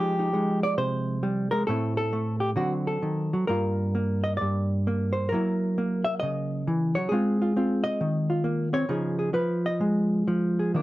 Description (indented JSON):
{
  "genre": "solo jazz",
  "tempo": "133 BPM",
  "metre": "4/4",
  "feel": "swing 66% on 8ths, rubato",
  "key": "unclear",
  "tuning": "A4 = 441 Hz",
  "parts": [
    { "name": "hollow-body jazz guitar", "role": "solo", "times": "0.0-10.8 s", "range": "G2 to Fb5", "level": "-24 LUFS", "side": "equal", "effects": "none" }
  ],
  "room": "moderate studio reverb, RT60 0.5 s",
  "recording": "dark, warm production",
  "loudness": "-24 LUFS",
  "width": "side -17 dB against mid",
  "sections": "0.0-10.7 A section",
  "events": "none",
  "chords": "0.0 Fm9; 1.7 Am; 2.6 D7b9; 3.5 Gm7; 5.3 Gb7; 7.1 Ab69; 8.9 Db9"
}